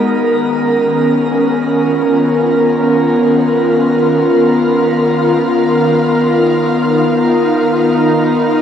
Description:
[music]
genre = ambient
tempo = free time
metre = none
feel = none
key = unclear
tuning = A4 = 439 Hz
[part]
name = airy breathy pad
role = sustained chords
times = 0.0-8.6 s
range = D#3 to A#4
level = -10 LUFS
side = equal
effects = chorus
[part]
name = muted chamber violin section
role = texture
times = 0.1-8.6 s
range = E#5 to E#6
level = -27 LUFS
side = equal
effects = none
[sound]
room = wet shimmer reverb, RT60 8.0 s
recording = dark, warm production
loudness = -10 LUFS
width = side -8 dB against mid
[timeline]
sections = 0.1-8.6 A section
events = fade-in on violin section 0.1-8.6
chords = 0.1 C#13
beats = free time

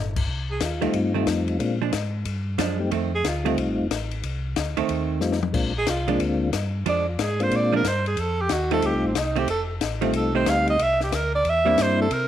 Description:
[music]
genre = soul jazz organ trio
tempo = 183 BPM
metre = 4/4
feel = swing 64% on 8ths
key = F mixolydian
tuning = A4 = 440 Hz
[part]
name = mellow tonewheel organ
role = bass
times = 0.0-12.3 s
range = F1 to C3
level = -28 LUFS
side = equal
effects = chorus vibrato, slow rotary speaker
[part]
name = compact cocktail drum kit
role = drums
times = 0.2-12.2 s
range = crash cymbal, hi-hat, kick drum, ride cymbal, snare drum, toms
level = -30 LUFS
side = left 7 dB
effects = none
[part]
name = breathy alto saxophone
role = melody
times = 0.5-1.0, 3.2-3.6, 5.8-12.3 s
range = C4 to F5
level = -24 LUFS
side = right 2 dB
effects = none
[part]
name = percussive tonewheel organ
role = melody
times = 0.8-12.1 s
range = G3 to G4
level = -25 LUFS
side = left 3 dB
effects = slow rotary speaker, chorus vibrato
[part]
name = hollow-body jazz guitar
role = accompaniment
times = 0.8-12.1 s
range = Eb3 to E4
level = -28 LUFS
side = right 10 dB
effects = none
[sound]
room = wet spring reverb, RT60 1.4 s, small room ambience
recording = 1960s-style stereo with parts hard left and right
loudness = -21 LUFS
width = side -11 dB against mid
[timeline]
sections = 0.3-12.3 A section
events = alto saxophone solo 0.3-12.3; drum fill 5.2-5.5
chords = 0.3 F7; 1.6 Bb7; 2.9 F7; 5.5 Bb7; 8.2 F7; 10.8 C7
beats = | 0.29 0.62 0.94 1.27 | 1.60 1.93 2.26 2.59 | 2.92 3.24 3.57 3.90 | 4.23 4.56 4.89 5.21 | 5.54 5.87 6.20 6.53 | 6.86 7.18 7.51 7.84 | 8.17 8.50 8.83 9.15 | 9.48 9.81 10.14 10.47 | 10.80 11.12 11.45 11.78 | 12.11

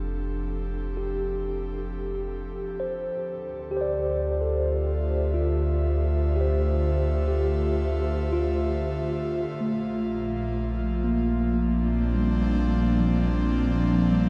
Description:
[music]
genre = ambient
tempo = 76 BPM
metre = 4/4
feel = straight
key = unclear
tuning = A4 = 440 Hz
[part]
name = airy breathy pad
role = sustained chords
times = 0.0-14.3 s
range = Bb2 to E5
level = -33 LUFS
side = equal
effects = chorus
[part]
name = mellow tine electric piano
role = arpeggios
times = 0.0-14.3 s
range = F3 to D5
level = -30 LUFS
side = equal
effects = diffuse ambient delay
[part]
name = warm sub bass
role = bass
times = 0.0-14.3 s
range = F1 to D2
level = -30 LUFS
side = equal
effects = none
[sound]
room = moderate huge ambient reverb, RT60 7.7 s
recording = none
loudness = -26 LUFS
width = mono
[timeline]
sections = 0.0-14.3 A section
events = fade-in on analog synth pad 0.0-14.3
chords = 0.0 F6; 3.1 Dm; 9.5 Bbadd9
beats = 0.77 1.56 2.35 | 3.14 3.93 4.72 5.51 | 6.30 7.10 7.89 8.70 | 9.51 10.31 11.10 11.91 | 12.71 13.51

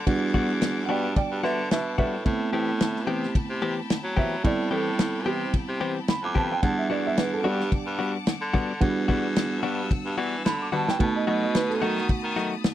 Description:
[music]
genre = straight-eighth soul blues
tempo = 110 BPM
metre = 4/4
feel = swing 55% on 16ths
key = E minor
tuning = A4 = 440 Hz
[part]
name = barky reed electric piano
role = accompaniment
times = 0.0-12.7 s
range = G3 to F#5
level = -29 LUFS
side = right 4 dB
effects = none
[part]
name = clear studio string section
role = sustained chords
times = 0.0-12.7 s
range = F#5 to E6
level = -38 LUFS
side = left 6 dB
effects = none
[part]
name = bright baritone saxophone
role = bass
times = 0.0-12.5 s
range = E2 to F#3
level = -30 LUFS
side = left 1 dB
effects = none
[part]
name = warm soul drum kit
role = drums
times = 0.1-12.7 s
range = kick drum, ride cymbal, snare drum, toms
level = -25 LUFS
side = left 1 dB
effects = none
[part]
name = direct-recorded clean electric guitar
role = stabs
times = 0.3-12.5 s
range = E3 to G4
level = -28 LUFS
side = left 6 dB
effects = none
[part]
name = dark upright piano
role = second line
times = 0.9-12.3 s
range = D4 to D6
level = -29 LUFS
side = right 5 dB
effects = none
[sound]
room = little or no reverb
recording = none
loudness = -23 LUFS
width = side -12 dB against mid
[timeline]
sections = 0.0-12.7 A section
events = upright piano solo 0.0-12.7; drum fill 10.7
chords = 0.0 Em9; 2.3 Am9; 6.6 Em9; 11.0 B7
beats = | 0.07 0.61 1.16 1.71 | 2.25 2.80 3.35 3.89 | 4.44 4.99 5.53 6.08 | 6.63 7.17 7.72 8.27 | 8.81 9.36 9.90 10.45 | 11.00 11.54 12.09 12.64

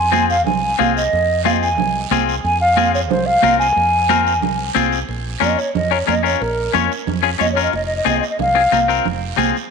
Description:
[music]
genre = latin, cumbia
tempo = 182 BPM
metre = 4/4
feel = straight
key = Bb minor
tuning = A4 = 440 Hz
[part]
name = mellow hollow silver concert flute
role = melody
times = 0.0-9.0 s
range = Bb4 to Ab5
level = -17 LUFS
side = equal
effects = slapback echo
[part]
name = fingered electric bass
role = bass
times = 0.0-9.5 s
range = F1 to F2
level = -24 LUFS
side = right 1 dB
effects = none
[part]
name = clean electric guitar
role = accompaniment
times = 0.1-9.6 s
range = C4 to Db5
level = -20 LUFS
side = left 12 dB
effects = none
[part]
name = congas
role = percussion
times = 0.1-9.6 s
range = none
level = -24 LUFS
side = right 16 dB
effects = none
[part]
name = guiro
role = percussion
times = 0.1-9.7 s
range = none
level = -31 LUFS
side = right 16 dB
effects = none
[sound]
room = moderate plate reverb, RT60 2.5 s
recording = 1960s-style stereo with parts hard left and right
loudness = -14 LUFS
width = side -5 dB against mid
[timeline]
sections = 0.0-5.1 A section; 5.1-9.7 B section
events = flute solo 5.1-9.7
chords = 0.0 Fm; 5.1 Bbm; 7.7 Fm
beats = 0.14 0.47 0.80 | 1.13 1.46 1.79 2.12 | 2.45 2.78 3.11 3.44 | 3.77 4.10 4.43 4.76 | 5.09 5.42 5.75 6.08 | 6.41 6.74 7.07 7.40 | 7.73 8.06 8.39 8.72 | 9.06 9.39

